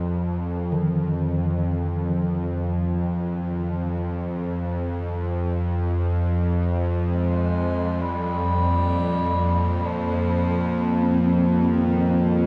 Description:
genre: ambient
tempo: free time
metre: none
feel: none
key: unclear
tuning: A4 = 439 Hz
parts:
  - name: warm bass clarinet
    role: melody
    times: 0.0-0.2, 7.1-12.5 s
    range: Eb3 to Ab3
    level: -31 LUFS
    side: equal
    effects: delay
  - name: bowed-like drone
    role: drone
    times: 0.0-12.5 s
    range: F2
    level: -25 LUFS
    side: equal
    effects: built-in reverb
  - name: gamelan-type bronze metallophone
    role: arpeggios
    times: 0.7-12.5 s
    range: Eb3 to C4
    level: -31 LUFS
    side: equal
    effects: delay
  - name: dark analog pad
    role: sustained chords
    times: 8.0-12.5 s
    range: F3 to Eb5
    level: -26 LUFS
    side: equal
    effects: chorus
room: moderate huge ambient reverb, RT60 8.8 s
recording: none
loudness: -23 LUFS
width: mono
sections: 0.0-12.5 A section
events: fade-in on bass clarinet 0.0-12.5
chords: 0.0 N.C.; 8.0 Ebadd9/F

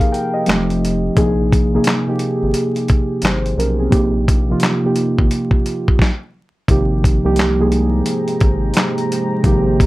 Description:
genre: lo-fi hip hop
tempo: 87 BPM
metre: 4/4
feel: swing 65% on 16ths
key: Ab major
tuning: A4 = 440 Hz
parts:
  - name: muted felt-like synth keys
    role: accompaniment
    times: 0.0-9.9 s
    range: C3 to G5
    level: -17 LUFS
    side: right 1 dB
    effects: chorus, low-pass filter
  - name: dusty soul sampler-style drum kit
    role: drums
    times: 0.0-9.9 s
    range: handclaps, hi-hat, kick drum, snare drum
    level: -16 LUFS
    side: equal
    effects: none
  - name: round analog bass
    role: bass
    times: 0.5-9.9 s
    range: F1 to C2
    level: -20 LUFS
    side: equal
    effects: none
  - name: deep dark ambient pad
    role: sustained chords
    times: 7.6-9.9 s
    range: Ab3 to Bb5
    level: -25 LUFS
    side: left 1 dB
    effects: chorus, built-in reverb, low-pass filter
room: light reverb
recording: vinyl crackle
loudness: -14 LUFS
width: side -18 dB against mid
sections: 0.0-6.7 A section; 6.7-9.9 B section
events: stop 6.0-6.7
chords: 0.5 F7; 1.2 Bb5; 3.9 Abmaj9

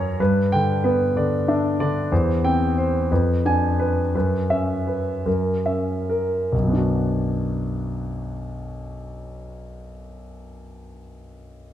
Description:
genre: classical, romantic character piece for solo piano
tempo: 45-63 BPM (dotted quarters)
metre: 6/8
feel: rubato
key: B minor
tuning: A4 = 440 Hz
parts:
  - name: warm concert grand piano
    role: solo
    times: 0.0-11.7 s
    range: B1 to A#5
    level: -21 LUFS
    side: equal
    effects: none
room: moderate recital hall reverb, RT60 1.4 s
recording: dark, warm production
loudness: -19 LUFS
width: side -11 dB against mid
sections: 0.0-6.5 A section; 6.5-11.5 B section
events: slowing down 1.2-6.5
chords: 0.2 G; 2.1 C/E; 3.1 Fdim7; 4.1 F#7sus4; 5.3 F#7; 6.5 Bm

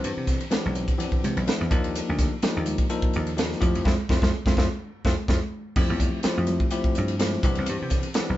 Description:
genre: electric jazz fusion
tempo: 126 BPM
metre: 4/4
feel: straight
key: F lydian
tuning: A4 = 441 Hz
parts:
  - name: bell-like tine electric piano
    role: accompaniment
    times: 0.0-8.4 s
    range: E3 to A4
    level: -29 LUFS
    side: left 3 dB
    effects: none
  - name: dry thumbed slap bass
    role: bass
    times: 0.0-8.4 s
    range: B1 to C3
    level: -28 LUFS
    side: equal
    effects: none
  - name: crisp fusion drum kit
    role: drums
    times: 0.0-8.3 s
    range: crash cymbal, hi-hat, kick drum, ride cymbal, snare drum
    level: -25 LUFS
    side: equal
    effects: none
  - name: congas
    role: percussion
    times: 0.0-8.3 s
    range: none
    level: -31 LUFS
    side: right 1 dB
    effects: none
room: light reverb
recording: band playing live in one room, nothing above 7.8 kHz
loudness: -22 LUFS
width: side -14 dB against mid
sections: 0.0-5.8 A section; 5.8-8.4 A section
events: band accent 3.9-5.8; drum fill 4.8-5.8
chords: 0.0 Cmaj9; 1.7 Ebmaj9; 3.6 Fmaj7(no3); 5.8 Fmaj9; 7.4 Cmaj9

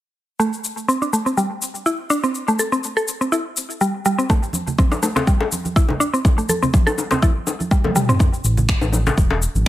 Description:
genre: afro house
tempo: 123 BPM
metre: 4/4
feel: swing 54% on 16ths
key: A minor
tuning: A4 = 440 Hz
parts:
  - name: mallet-like synth pluck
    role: arpeggios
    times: 0.4-8.2 s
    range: G3 to A4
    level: -20 LUFS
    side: equal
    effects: chorus, sidechain pumping, tape echo
  - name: deep house drum kit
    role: drums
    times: 0.4-9.6 s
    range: finger snaps, shaker, toms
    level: -25 LUFS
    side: left 1 dB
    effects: overdrive
  - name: electronic kick drum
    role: drums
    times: 4.3-9.3 s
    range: none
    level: -16 LUFS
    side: equal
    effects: overdrive
  - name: bongos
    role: percussion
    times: 4.3-9.4 s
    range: none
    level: -24 LUFS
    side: left 4 dB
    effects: none
  - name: congas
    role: percussion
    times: 4.3-9.6 s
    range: none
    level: -26 LUFS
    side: right 3 dB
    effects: none
  - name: smooth gliding synth bass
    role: bass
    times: 8.4-9.7 s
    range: E1 to A1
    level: -19 LUFS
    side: equal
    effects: sidechain pumping
room: light reverb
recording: none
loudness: -17 LUFS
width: side -14 dB against mid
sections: 0.4-8.2 A section; 8.2-9.7 B section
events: drum fill 7.8-8.2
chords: 0.4 Am7; 8.2 A5

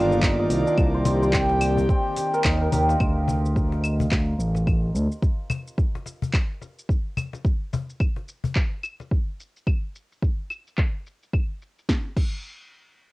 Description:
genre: organic downtempo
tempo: 108 BPM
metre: 4/4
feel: swing 59% on 16ths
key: unclear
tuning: A4 = 441 Hz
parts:
  - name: airy breathy pad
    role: sustained chords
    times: 0.0-3.0 s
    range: Eb3 to D5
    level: -25 LUFS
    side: equal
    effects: chorus, vintage 12-bit sampler grit, sidechain pumping, cassette tape
  - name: santur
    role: arpeggios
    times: 0.0-6.2 s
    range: C4 to C5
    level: -27 LUFS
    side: right 1 dB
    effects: vintage 12-bit sampler grit, cassette tape, tape echo
  - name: smooth gliding synth bass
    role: bass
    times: 0.0-5.1 s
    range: G1 to Eb2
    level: -23 LUFS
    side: equal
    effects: none
  - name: deep house drum kit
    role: drums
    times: 0.1-12.4 s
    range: claves, crash cymbal, handclaps, hi-hat, shaker, snare drum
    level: -29 LUFS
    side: equal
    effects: overdrive, low-pass filter on perc, cassette tape, low-pass filter on hats, low-pass filter on snare, low-pass filter on cymbals
  - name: cajon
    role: percussion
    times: 0.1-9.1 s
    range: none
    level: -29 LUFS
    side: left 3 dB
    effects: none
  - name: electronic kick drum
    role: drums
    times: 0.2-12.4 s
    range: none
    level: -23 LUFS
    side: equal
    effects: overdrive, cassette tape
room: moderate studio reverb, RT60 0.6 s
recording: home recording on cassette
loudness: -22 LUFS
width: side -20 dB against mid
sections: 0.0-3.0 A section; 3.0-11.9 B section; 11.9-13.1 C section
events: none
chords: 0.0 Cm11; 3.0 D5; 7.4 N.C.

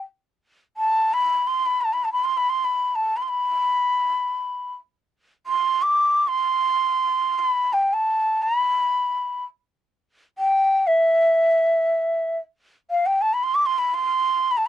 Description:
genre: Turkish makam ensemble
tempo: free time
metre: none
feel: none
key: unclear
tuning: A4 = 440 Hz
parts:
  - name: breathy reedy ney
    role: solo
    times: 0.8-14.7 s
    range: E5 to D6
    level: -19 LUFS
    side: equal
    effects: none
room: light reverb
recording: dry, close 1970s-style studio recording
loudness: -19 LUFS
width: side -12 dB against mid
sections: 0.0-12.5 A section; 12.5-14.7 A section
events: none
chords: none

